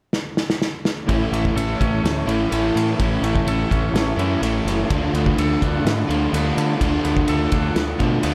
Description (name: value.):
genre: rock, shoegaze and dream pop.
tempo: 126 BPM.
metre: 4/4.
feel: straight.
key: A major.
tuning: A4 = 445 Hz.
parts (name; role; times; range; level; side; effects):
loose indie drum kit; drums; 0.1-8.3 s; kick drum, ride cymbal, snare drum; -26 LUFS; equal; none.
twangy electric guitar; arpeggios; 1.1-8.3 s; E3 to A4; -32 LUFS; equal; subtle chorus, slapback echo.
overdriven semi-hollow guitar; riff; 1.1-8.3 s; A2 to F4; -26 LUFS; equal; subtle chorus.
overdriven semi-hollow guitar; riff; 1.1-8.3 s; A2 to F4; -26 LUFS; equal; reverse reverb.
growling fingered electric bass; bass; 1.1-8.3 s; F#1 to D3; -26 LUFS; equal; overdrive.
room: light reverb, studio ambience.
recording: none.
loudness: -20 LUFS.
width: mono.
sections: 0.0-1.1 A section; 1.1-8.3 B section.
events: drum fill 0.1-1.1.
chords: 0.0 N.C.; 1.1 A; 4.9 Dm6.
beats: 0.13 0.61 | 1.09 1.56 2.04 2.52 | 3.00 3.47 3.95 4.42 | 4.90 5.38 5.85 6.33 | 6.80 7.28 7.76 8.23.